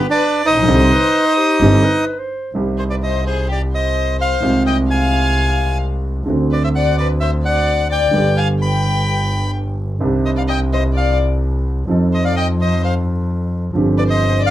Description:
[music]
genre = tango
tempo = 129 BPM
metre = 4/4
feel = rubato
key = C harmonic minor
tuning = A4 = 443 Hz
[part]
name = bandoneon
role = melody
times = 0.0-14.5 s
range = D4 to B5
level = -18 LUFS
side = right 1 dB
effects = none
[part]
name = warm studio violin section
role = second line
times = 0.0-14.5 s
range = G4 to G5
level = -22 LUFS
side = left 5 dB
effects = none
[part]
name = warm concert grand piano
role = accompaniment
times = 0.5-14.5 s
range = G1 to A4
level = -19 LUFS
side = right 1 dB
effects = none
[part]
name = clear double bass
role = bass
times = 0.5-14.5 s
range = G1 to F2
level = -18 LUFS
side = equal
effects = none
[part]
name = warm clarinet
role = second line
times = 0.9-2.5 s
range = G4 to C5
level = -23 LUFS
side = equal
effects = none
[sound]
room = moderate club reverb, RT60 0.5 s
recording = none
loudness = -14 LUFS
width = side -13 dB against mid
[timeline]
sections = 0.0-2.6 A section; 2.6-14.5 A section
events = none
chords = 0.0 G (rootless); 0.7 Cmadd9; 2.6 Cm; 4.4 Fm7/C; 6.3 D7; 8.1 G; 10.0 Cmadd9; 11.9 F7; 13.8 G7sus4

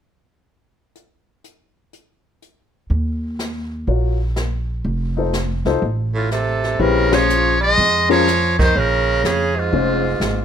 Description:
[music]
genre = jazz, small-group swing and bop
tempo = 123 BPM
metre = 4/4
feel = swing 66% on 8ths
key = Bb minor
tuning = A4 = 439 Hz
[part]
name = jazz brush drum kit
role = drums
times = 1.0-10.4 s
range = brushed snare drum, hi-hat, kick drum, ride cymbal, snare drum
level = -25 LUFS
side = equal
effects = none
[part]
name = upright bass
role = bass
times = 2.9-10.4 s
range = F1 to F2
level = -21 LUFS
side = right 1 dB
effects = none
[part]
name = warm grand piano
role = accompaniment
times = 3.9-10.0 s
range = C4 to Db5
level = -20 LUFS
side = left 8 dB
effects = none
[part]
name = edgy tenor saxophone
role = second line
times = 6.1-10.4 s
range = Ab2 to Ab3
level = -20 LUFS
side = right 5 dB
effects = none
[part]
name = trumpet with metal mute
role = melody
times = 6.2-10.4 s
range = F4 to Eb5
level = -19 LUFS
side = left 1 dB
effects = none
[sound]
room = light reverb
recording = minimal, uncompressed stereo recording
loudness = -16 LUFS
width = side -8 dB against mid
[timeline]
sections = 0.9-2.9 A section; 2.9-6.8 B section; 6.8-10.4 C section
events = band accent 7.0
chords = 0.9 N.C.; 2.9 Ebm9; 4.9 F7; 6.8 Bbm7

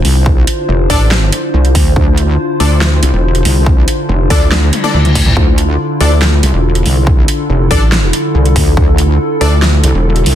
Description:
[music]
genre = heavy wobble dubstep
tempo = 141 BPM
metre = 4/4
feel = half-time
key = D minor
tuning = A4 = 440 Hz
[part]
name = evolving wavetable pad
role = sustained chords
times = 0.0-10.3 s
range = D3 to C5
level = -17 LUFS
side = left 1 dB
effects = chorus, built-in reverb, sidechain pumping
[part]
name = pulsing pluck wobble bass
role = bass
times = 0.0-10.2 s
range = E1 to D2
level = -11 LUFS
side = equal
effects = chorus, overdrive
[part]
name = wobble bass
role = bass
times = 0.0-10.3 s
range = C2 to D2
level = -11 LUFS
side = equal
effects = chorus, overdrive
[part]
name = dubstep drum kit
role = drums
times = 0.0-10.3 s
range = handclaps, hi-hat, snare drum, toms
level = -17 LUFS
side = right 1 dB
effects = studio reverb
[part]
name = electronic kick drum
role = drums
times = 0.3-8.9 s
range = none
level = -12 LUFS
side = equal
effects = studio reverb
[part]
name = supersaw stab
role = stabs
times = 0.9-9.5 s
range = D4 to D5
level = -19 LUFS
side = left 3 dB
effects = digital delay
[part]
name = reverse cymbal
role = sound effects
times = 4.7-5.4 s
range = none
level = -20 LUFS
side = left 4 dB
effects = none
[sound]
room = little or no reverb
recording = dense, heavily limited modern master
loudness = -8 LUFS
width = side -11 dB against mid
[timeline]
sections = 0.0-10.3 A section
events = reverse cymbal 4.7-5.4; drum fill 4.7-5.4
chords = 0.0 Dmadd9

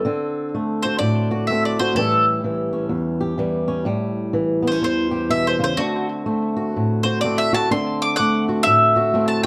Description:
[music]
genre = acoustic country blues, solo or duo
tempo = 126 BPM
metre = 4/4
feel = swing 62% on 8ths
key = unclear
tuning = A4 = 440 Hz
[part]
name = mandolin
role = melody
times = 0.0-9.5 s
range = F#4 to D6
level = -22 LUFS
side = equal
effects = none
[part]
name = fingerpicked swing-style acoustic guitar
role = accompaniment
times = 0.0-9.5 s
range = E2 to G4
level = -23 LUFS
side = equal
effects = none
[sound]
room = moderate studio reverb, RT60 0.7 s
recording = dark, warm production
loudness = -20 LUFS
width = mono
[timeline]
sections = 0.0-9.5 A section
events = mandolin solo 0.0-9.5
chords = 0.0 D7; 2.0 A7; 5.8 D7

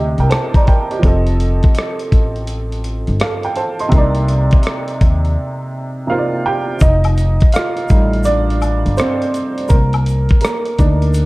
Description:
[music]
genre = lo-fi hip hop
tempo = 83 BPM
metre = 4/4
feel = swing 66% on 16ths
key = unclear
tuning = A4 = 442 Hz
[part]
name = warm upright piano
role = accompaniment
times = 0.0-11.3 s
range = C3 to C6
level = -18 LUFS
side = right 2 dB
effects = low-pass filter
[part]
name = upright bass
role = bass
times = 0.0-11.3 s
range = F1 to Eb2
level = -16 LUFS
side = equal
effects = none
[part]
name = dusty soul sampler-style drum kit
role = drums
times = 0.2-11.3 s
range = hi-hat, kick drum, rim click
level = -14 LUFS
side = equal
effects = none
[part]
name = tube shaker and woodblock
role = percussion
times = 6.8-11.3 s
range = none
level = -28 LUFS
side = left 6 dB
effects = none
[sound]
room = light reverb, studio reverb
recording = dark, warm production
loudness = -13 LUFS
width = side -21 dB against mid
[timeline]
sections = 0.0-6.8 A section; 6.8-11.3 A section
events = break 5.4-6.8; upright piano solo 6.8-11.3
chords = 0.0 Cm9; 1.0 F7; 3.9 Cm9; 6.8 F7; 9.7 Cm9

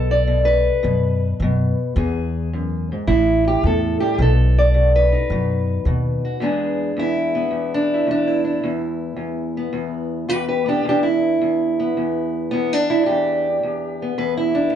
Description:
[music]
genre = acoustic country blues, solo or duo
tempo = 108 BPM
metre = 4/4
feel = swing 68% on 8ths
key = E mixolydian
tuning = A4 = 440 Hz
[part]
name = fingerpicked steel-string acoustic guitar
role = melody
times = 0.0-14.8 s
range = E2 to D5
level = -18 LUFS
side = equal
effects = none
[part]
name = upright bass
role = bass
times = 0.0-6.2 s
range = A1 to F#2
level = -19 LUFS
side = equal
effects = none
[sound]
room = wet small room reverb, RT60 0.6 s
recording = heard from further back in the room, nothing above 10.7 kHz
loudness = -17 LUFS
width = side -9 dB against mid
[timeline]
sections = 0.0-6.4 A section; 6.4-14.8 A section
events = none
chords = 0.0 B5; 2.0 E; 3.1 A5; 4.2 B7; 6.4 E7

